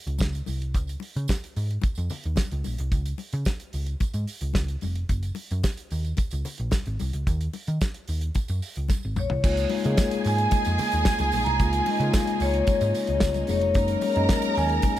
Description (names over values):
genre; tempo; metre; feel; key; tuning
disco; 110 BPM; 4/4; straight; Db major; A4 = 441 Hz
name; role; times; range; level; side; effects
hollow-body short-scale picked electric bass; bass; 0.1-14.8 s; F1 to Eb3; -27 LUFS; equal; none
damped 70s drum kit; drums; 0.1-15.0 s; crash cymbal, hi-hat, kick drum, snare drum, toms; -27 LUFS; equal; none
congas; percussion; 0.2-15.0 s; none; -36 LUFS; left 7 dB; none
tambourine; percussion; 0.2-15.0 s; none; -44 LUFS; right 7 dB; none
vibraphone with soft mallets; melody; 9.2-15.0 s; Db5 to Bb5; -26 LUFS; left 1 dB; none
warm studio violin section; second line; 9.4-15.0 s; Ab4 to Bb5; -31 LUFS; right 1 dB; none
mellow tine electric piano; accompaniment; 9.4-15.0 s; Ab3 to Ab4; -28 LUFS; left 3 dB; slow stereo tremolo
warm studio string section; sustained chords; 9.4-15.0 s; Db3 to Bb4; -36 LUFS; right 1 dB; none
room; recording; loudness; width
little or no reverb; none; -23 LUFS; side -13 dB against mid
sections
0.0-9.4 A section; 9.4-15.0 B section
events
drum fill 8.9-9.4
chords
0.0 N.C.; 5.1 Gb69; 7.3 N.C.; 9.4 Db69; 13.8 Gb69